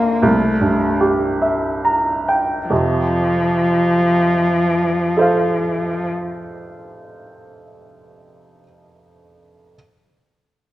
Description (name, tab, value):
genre	classical, romantic duo for cello and grand piano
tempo	23-28 BPM (dotted quarters)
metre	6/8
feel	rubato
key	F major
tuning	A4 = 435 Hz
part	rich cello	melody	0.0-6.1 s	F3 to Bb3	-17 LUFS	left 1 dB	none
part	bright baby grand piano	accompaniment	0.0-9.8 s	C2 to Bb5	-18 LUFS	right 1 dB	none
room	wet scoring stage reverb, RT60 1.5 s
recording	worn, warbling old tape, cassette tape, warbly pitch drift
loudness	-15 LUFS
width	side -15 dB against mid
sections	0.0-2.7 A section; 2.7-7.5 B section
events	slowing down 0.0-2.7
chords	0.2 C7; 2.7 F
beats	0.22 | 2.69 5.15